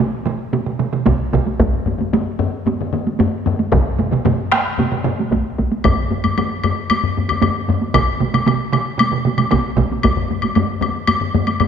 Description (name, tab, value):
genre	japanese traditional, taiko drum ensemble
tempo	114 BPM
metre	4/4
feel	straight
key	none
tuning	none
part	taiko ensemble	percussion	0.3-11.7 s	none	-20 LUFS	right 2 dB	none
part	taiko ensemble	percussion	0.3-9.9 s	none	-20 LUFS	right 6 dB	none
part	taiko ensemble	percussion	1.1-10.2 s	none	-20 LUFS	equal	none
part	taiko ensemble	percussion	1.6-11.7 s	none	-21 LUFS	left 5 dB	none
part	woodblock	percussion	5.8-11.7 s	none	-21 LUFS	left 6 dB	none
room	moderate scoring stage reverb, RT60 2.2 s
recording	none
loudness	-16 LUFS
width	side -8 dB against mid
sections	0.0-11.7 A section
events	speeding up 0.0-11.7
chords	none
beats	0.00 0.53 1.07 | 1.60 2.13 2.67 3.20 | 3.73 4.26 4.79 5.32 | 5.84 6.37 6.90 7.42 | 7.95 8.47 9.00 9.52 | 10.04 10.56 11.08 11.60